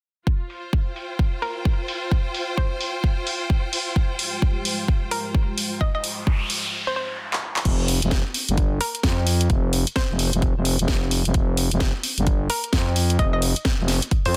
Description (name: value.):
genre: bass house.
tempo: 130 BPM.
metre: 4/4.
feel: swing 61% on 16ths.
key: F minor.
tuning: A4 = 440 Hz.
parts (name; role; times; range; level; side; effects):
electronic kick drum; drums; 0.3-14.2 s; none; -24 LUFS; equal; none.
clear studio string section; texture; 0.3-6.7 s; F4 to G5; -33 LUFS; equal; sidechain pumping.
house drum kit; drums; 0.5-14.4 s; crash cymbal, handclaps, hi-hat, snare drum; -28 LUFS; equal; overdrive, low-pass filter on hats, low-pass filter on snare, low-pass filter on cymbals, low-pass filter on room.
hollow square pluck; melody; 1.4-14.4 s; Bb4 to Eb5; -32 LUFS; equal; chorus, delay.
dark analog pad; sustained chords; 4.0-6.7 s; Ab3 to G4; -37 LUFS; equal; chorus, sidechain pumping.
noise sweep; sound effects; 6.1-7.7 s; none; -33 LUFS; equal; none.
growling FM bass; bass; 7.7-14.4 s; F1 to F2; -24 LUFS; equal; tube saturation, sidechain pumping.
room: little or no reverb.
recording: dense, heavily limited modern master.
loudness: -23 LUFS.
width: mono.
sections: 0.3-7.7 A section; 7.7-14.4 B section.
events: noise sweep 6.1-7.7; drum fill 7.3-7.7; filter sweep on FM bass 7.7-14.4.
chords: 0.3 Fmadd9; 7.7 F5.